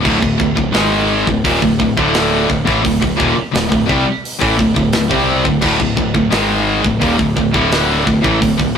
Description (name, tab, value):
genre	heavy metal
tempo	86 BPM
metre	4/4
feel	straight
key	unclear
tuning	A4 = 441 Hz
part	cranked stack guitar	riff	0.0-8.8 s	D2 to C4	-18 LUFS	equal	overdrive
part	heavy high-gain guitar	riff	0.0-8.8 s	D2 to C4	-19 LUFS	right 6 dB	distortion
part	tight distorted guitar	riff	0.0-8.8 s	D2 to C4	-18 LUFS	left 6 dB	distortion
part	growling picked electric bass	bass	0.0-8.8 s	D1 to C2	-22 LUFS	equal	overdrive
part	tight metal drum kit	drums	0.1-8.8 s	crash cymbal, hi-hat, kick drum, snare drum	-19 LUFS	equal	none
room	light reverb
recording	rough rehearsal-room recording, tube saturation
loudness	-12 LUFS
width	side -7 dB against mid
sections	0.0-8.8 A section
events	none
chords	0.0 D5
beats	| 0.04 0.73 1.44 2.13 | 2.83 3.53 4.23 4.93 | 5.63 6.33 7.03 7.72 | 8.42